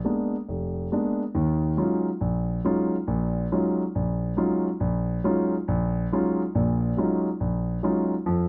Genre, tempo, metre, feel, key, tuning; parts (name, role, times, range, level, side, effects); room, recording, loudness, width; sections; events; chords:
jazz; 139 BPM; 4/4; swing 66% on 8ths; Eb minor; A4 = 440 Hz
warm concert grand piano; solo; 0.0-8.5 s; F1 to F4; -26 LUFS; equal
little or no reverb; dry, close 1970s-style studio recording; -26 LUFS; mono
0.0-1.3 A section; 1.3-8.5 B section
0.0 Bb7b9; 1.3 Ebm11